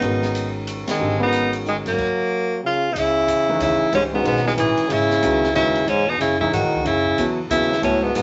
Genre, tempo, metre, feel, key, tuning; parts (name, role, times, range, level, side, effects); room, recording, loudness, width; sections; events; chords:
modal jazz; 184 BPM; 3/4; swing 62% on 8ths; C# minor; A4 = 436 Hz
edgy tenor saxophone; melody; 0.0-8.2 s; Ab3 to G#4; -23 LUFS; equal
breathy trombone; second line; 0.0-8.2 s; E2 to Cb4; -26 LUFS; equal
warm concert grand piano; accompaniment; 0.0-8.2 s; D3 to C#5; -27 LUFS; equal
upright bass; bass; 0.0-8.2 s; G1 to G#2; -32 LUFS; equal
open jazz drum kit; drums; 0.0-8.2 s; crash cymbal, hi-hat, kick drum, ride cymbal, snare drum; -35 LUFS; equal
wet studio reverb, RT60 0.7 s; nothing above 7.9 kHz; -20 LUFS; mono
0.0-3.0 A section; 3.0-8.2 B section
band accent 0.8
0.0 Abm11; 3.0 C#m9; 6.9 F#m7